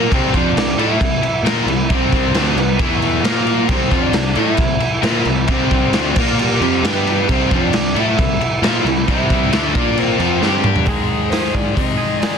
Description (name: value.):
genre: quiet-loud alternative rock.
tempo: 134 BPM.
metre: 4/4.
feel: straight.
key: C major.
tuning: A4 = 439 Hz.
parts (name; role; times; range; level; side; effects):
lead guitar through a small cranked amp; melody; 0.0-12.4 s; G3 to E5; -22 LUFS; right 1 dB; overdrive, tape echo.
overdriven semi-hollow guitar; riff; 0.0-10.9 s; C3 to Bb4; -25 LUFS; right 14 dB; none.
raw garage guitar; riff; 0.0-10.9 s; C3 to Bb4; -24 LUFS; right 1 dB; overdrive.
tight distorted guitar; riff; 0.0-12.4 s; Ab2 to Bb4; -21 LUFS; left 15 dB; distortion.
overdriven picked electric bass; bass; 0.0-11.9 s; C2 to C3; -22 LUFS; equal; none.
raw garage drum kit; drums; 0.1-12.3 s; crash cymbal, hi-hat, kick drum, snare drum, toms; -18 LUFS; equal; none.
twangy electric guitar; arpeggios; 10.9-12.4 s; Ab2 to Ab4; -25 LUFS; right 10 dB; none.
room: little or no reverb.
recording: dense, heavily limited modern master.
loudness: -14 LUFS.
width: side -6 dB against mid.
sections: 0.0-10.9 A section; 10.9-12.4 B section.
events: drum fill 10.4-10.9; lead electric guitar solo 10.9-12.4.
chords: 0.1 C; 2.8 E5; 3.2 Bb5; 3.7 C; 6.2 Bb5; 6.6 C5; 6.8 G5; 7.3 C; 9.7 Bb5; 10.2 F5; 10.4 G5; 10.9 Ab.